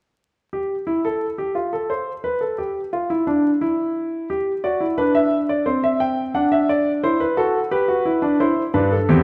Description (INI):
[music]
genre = classical, baroque-style 4-part fugue for grand piano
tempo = 88 BPM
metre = 3/4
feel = straight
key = C major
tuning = A4 = 440 Hz
[part]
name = clear grand piano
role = solo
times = 0.5-9.2 s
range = E2 to G5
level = -20 LUFS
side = equal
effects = none
[sound]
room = wet recital hall reverb, RT60 1.6 s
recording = dark, warm production, vinyl crackle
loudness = -21 LUFS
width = mono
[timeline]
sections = 0.2-9.2 A section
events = none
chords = 0.2 N.C.; 4.3 G; 5.7 C; 6.3 D7; 7.7 G; 8.4 C